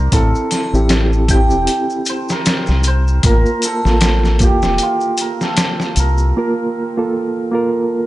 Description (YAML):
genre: trip hop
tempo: 77 BPM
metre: 4/4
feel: swing 57% on 16ths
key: unclear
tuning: A4 = 441 Hz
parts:
  - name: cimbalom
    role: melody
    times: 0.0-8.1 s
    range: F4 to G5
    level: -22 LUFS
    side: right 1 dB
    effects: dub echo
  - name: mellow reed electric piano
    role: accompaniment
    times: 0.0-8.1 s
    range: Bb3 to Bb4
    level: -19 LUFS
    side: right 2 dB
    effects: fast tremolo, tape echo
  - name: deep dub fingered electric bass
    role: bass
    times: 0.0-6.3 s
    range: E1 to C2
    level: -15 LUFS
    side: equal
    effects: tube saturation
  - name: trip hop sampler-style drum kit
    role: drums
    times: 0.1-6.2 s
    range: hi-hat, kick drum, snare drum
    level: -17 LUFS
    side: equal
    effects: none
  - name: maracas and triangle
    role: percussion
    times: 0.1-6.3 s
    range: none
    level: -27 LUFS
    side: left 2 dB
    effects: none
room: digital ambience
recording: nothing above 10.9 kHz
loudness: -13 LUFS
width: side -16 dB against mid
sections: 0.0-8.1 A section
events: none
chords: 0.0 Am7; 3.2 Gm7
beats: | 0.12 0.90 1.68 2.46 | 3.23 4.01 4.79 5.57 | 6.35 7.13 7.91